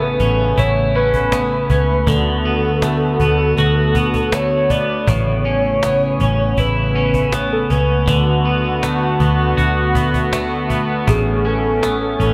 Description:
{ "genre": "dream pop", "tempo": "80 BPM", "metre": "4/4", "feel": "straight", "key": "A major", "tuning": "A4 = 440 Hz", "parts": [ { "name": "warm velvety synth lead", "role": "melody", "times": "0.0-12.3 s", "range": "G#4 to D5", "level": "-22 LUFS", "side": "equal", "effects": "chorus, delay" }, { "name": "warm analog pad", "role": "sustained chords", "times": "0.0-12.3 s", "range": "C#3 to F#4", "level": "-22 LUFS", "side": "equal", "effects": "chorus" }, { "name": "twangy electric guitar", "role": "arpeggios", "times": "0.0-12.3 s", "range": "A2 to F#4", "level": "-24 LUFS", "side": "equal", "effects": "lush chorus, delay" }, { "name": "vintage muted fingered electric bass", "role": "bass", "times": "0.0-12.3 s", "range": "A1 to D2", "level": "-22 LUFS", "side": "equal", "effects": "none" }, { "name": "cajon", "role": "drums", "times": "0.2-12.3 s", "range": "none", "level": "-25 LUFS", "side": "equal", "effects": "none" } ], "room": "moderate plate reverb, RT60 1.9 s, digital ambience", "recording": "bright 1980s-style digital production", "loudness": "-17 LUFS", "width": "mono", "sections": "0.0-12.3 A section", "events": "none", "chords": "0.0 Aadd9; 2.1 D6; 5.1 Aadd9; 8.1 D6; 11.1 Aadd9" }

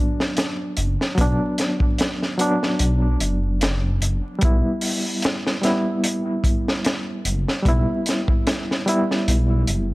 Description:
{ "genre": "trip hop", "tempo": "74 BPM", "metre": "4/4", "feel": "swing 55% on 16ths", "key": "unclear", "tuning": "A4 = 438 Hz", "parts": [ { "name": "barky reed electric piano", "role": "accompaniment", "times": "0.0-9.9 s", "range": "F#3 to E4", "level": "-23 LUFS", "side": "equal", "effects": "overdrive, fast tremolo, tape echo" }, { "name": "crunchy breakbeat drum kit", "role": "drums", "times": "0.2-9.9 s", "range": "hi-hat, kick drum, snare drum", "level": "-22 LUFS", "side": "equal", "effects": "none" }, { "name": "dark detuned saw bass", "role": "bass", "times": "0.8-9.9 s", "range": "F#1 to B1", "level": "-20 LUFS", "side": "equal", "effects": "tube saturation" } ], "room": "little or no reverb", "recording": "vinyl crackle", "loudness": "-19 LUFS", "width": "side -20 dB against mid", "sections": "0.0-9.9 A section", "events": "none", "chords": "0.0 Bm; 4.4 Em" }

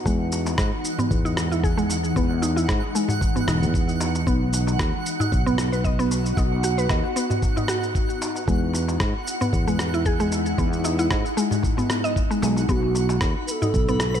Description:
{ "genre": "organic downtempo", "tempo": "114 BPM", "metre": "4/4", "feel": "swing 55% on 16ths", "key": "unclear", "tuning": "A4 = 441 Hz", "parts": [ { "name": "ethereal airy pad", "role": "sustained chords", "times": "0.0-14.2 s", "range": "E3 to F#4", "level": "-30 LUFS", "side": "left 1 dB", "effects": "ensemble chorus, built-in reverb, vintage 12-bit sampler grit, sidechain pumping" }, { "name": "twinkling granular texture", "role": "texture", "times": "0.0-14.2 s", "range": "F#5 to B5", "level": "-33 LUFS", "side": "right 2 dB", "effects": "built-in reverb" }, { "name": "mallet-like synth pluck", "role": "arpeggios", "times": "0.1-14.2 s", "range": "G#3 to D#5", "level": "-26 LUFS", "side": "equal", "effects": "chorus, ping-pong delay" }, { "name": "sustaining fretless electric bass", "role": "bass", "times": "0.1-14.2 s", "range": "E1 to G#2", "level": "-24 LUFS", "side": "equal", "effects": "tube saturation" }, { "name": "electronic kick drum", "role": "drums", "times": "0.1-13.9 s", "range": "none", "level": "-24 LUFS", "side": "equal", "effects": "none" }, { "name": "electronic shaker and rim click", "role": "drums", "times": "0.1-14.2 s", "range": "none", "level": "-30 LUFS", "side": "equal", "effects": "none" }, { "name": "darbuka", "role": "percussion", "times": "0.3-14.1 s", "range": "none", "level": "-30 LUFS", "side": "left 1 dB", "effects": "none" }, { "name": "breathy mellow low Native American-style wooden flute", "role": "melody", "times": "12.7-14.2 s", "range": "F#4 to B4", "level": "-26 LUFS", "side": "right 3 dB", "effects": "vintage 12-bit sampler grit, ping-pong delay" } ], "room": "light reverb", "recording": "none", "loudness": "-20 LUFS", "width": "side -9 dB against mid", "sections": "0.0-14.2 A section", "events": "filter sweep on synth pluck 0.0-14.2", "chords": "0.1 Emaj7; 4.3 B; 8.5 Emaj7; 12.7 B" }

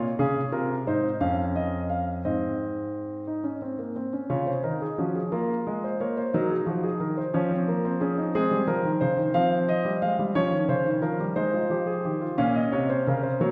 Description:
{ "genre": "classical, baroque-style 3-part fugue for grand piano", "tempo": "59 BPM (dotted quarters)", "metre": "6/8", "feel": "straight", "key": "Db major", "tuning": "A4 = 441 Hz", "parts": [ { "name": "warm concert grand piano", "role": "solo", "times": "0.0-13.5 s", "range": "F2 to F5", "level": "-26 LUFS", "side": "equal", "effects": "none" } ], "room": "wet recital hall reverb, RT60 1.6 s", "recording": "recorded in a church or concert hall", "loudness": "-26 LUFS", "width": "mono", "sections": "0.0-4.3 A section; 4.3-12.4 B section; 12.4-13.5 C section", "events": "none", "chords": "0.2 Db; 1.2 Db/F; 2.2 Ab; 4.3 Db; 5.3 Bbm; 6.3 Gb; 7.3 Db/F; 8.3 Ab; 9.3 Fm; 10.3 Db; 11.4 Ab; 12.4 Bbm" }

